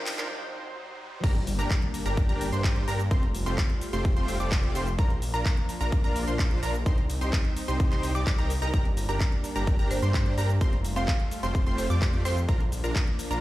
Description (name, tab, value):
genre	EDM, festival progressive house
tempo	128 BPM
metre	4/4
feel	straight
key	G minor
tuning	A4 = 439 Hz
part	lush unison pad	sustained chords	0.0-13.4 s	C3 to G5	-38 LUFS	equal	chorus, sidechain pumping
part	riser and impact	sound effects	0.0-3.1 s	none	-38 LUFS	equal	none
part	big-room dance drum kit	drums	0.1-13.4 s	cabasa, crash cymbal, handclaps, hi-hat	-36 LUFS	equal	none
part	big supersaw lead	riff	0.2-13.4 s	A3 to D5	-34 LUFS	equal	cassette tape, sidechain pumping, digital delay
part	wide unison pluck	arpeggios	1.2-13.4 s	Bb5 to D6	-36 LUFS	right 1 dB	sidechain pumping, digital delay
part	wide detuned saw bass	bass	1.2-13.4 s	F1 to G2	-29 LUFS	equal	chorus, sidechain pumping
part	electronic kick drum	drums	1.2-13.0 s	none	-25 LUFS	equal	none
part	marimba with medium hard mallets	melody	9.9-12.5 s	C5 to F5	-36 LUFS	right 3 dB	digital delay
room	digital ambience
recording	played on a big sound system in a bare room, stone room reverb, high-pass filter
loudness	-24 LUFS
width	side -16 dB against mid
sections	0.0-1.2 A section; 1.2-13.4 B section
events	build-up 0.0-1.2; drum fill 0.0; riser 0.0-1.2; filter sweep 0.0-1.2; break 0.3-1.2; drop 1.2-13.4; impact 1.2-3.1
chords	0.0 Cm; 1.2 Gm; 3.1 Fadd9; 5.0 Bb; 6.9 Cm; 8.7 Gm; 10.6 Fadd9; 12.5 Bb